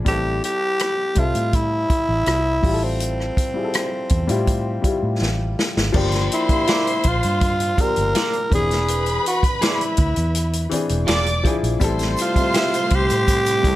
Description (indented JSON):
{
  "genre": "lush 1970s-style soul",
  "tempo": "82 BPM",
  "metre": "4/4",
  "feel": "straight",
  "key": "unclear",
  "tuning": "A4 = 438 Hz",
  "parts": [
    { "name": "warm baby grand piano", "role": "accompaniment", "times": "0.0-13.8 s", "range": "E3 to E5", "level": "-26 LUFS", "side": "left 4 dB", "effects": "none" },
    { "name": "vintage muted fingered electric bass", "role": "bass", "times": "0.0-13.7 s", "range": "E1 to A2", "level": "-23 LUFS", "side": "equal", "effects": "none" },
    { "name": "growling tenor saxophone", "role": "melody", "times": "0.1-13.8 s", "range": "C4 to Bb4", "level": "-22 LUFS", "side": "equal", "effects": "none" },
    { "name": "vintage drum kit", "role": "drums", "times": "0.1-13.8 s", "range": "crash cymbal, hi-hat, kick drum, rim click, snare drum", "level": "-22 LUFS", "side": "equal", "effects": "none" },
    { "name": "dark symphonic string section", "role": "second line", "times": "5.9-13.8 s", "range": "B4 to D6", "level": "-26 LUFS", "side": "equal", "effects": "none" },
    { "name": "electric guitar at the edge of break-up", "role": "riff", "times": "6.7-12.7 s", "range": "F4 to E5", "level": "-26 LUFS", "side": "right 4 dB", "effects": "tremolo" },
    { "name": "string machine, full ensemble", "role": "sustained chords", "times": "11.8-13.8 s", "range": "C3 to E5", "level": "-28 LUFS", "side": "right 1 dB", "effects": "ensemble chorus" },
    { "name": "tube shaker", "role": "percussion", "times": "11.8-13.6 s", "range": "none", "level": "-36 LUFS", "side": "right 6 dB", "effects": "none" }
  ],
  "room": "small room ambience",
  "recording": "none",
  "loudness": "-17 LUFS",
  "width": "side -15 dB against mid",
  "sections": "0.0-5.9 A section; 5.9-13.8 B section",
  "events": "drum fill 5.2-5.9",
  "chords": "0.1 Am7; 2.6 Fmaj9/A; 5.9 Gm7; 8.5 E7b13; 11.1 E7b9; 11.8 Am7"
}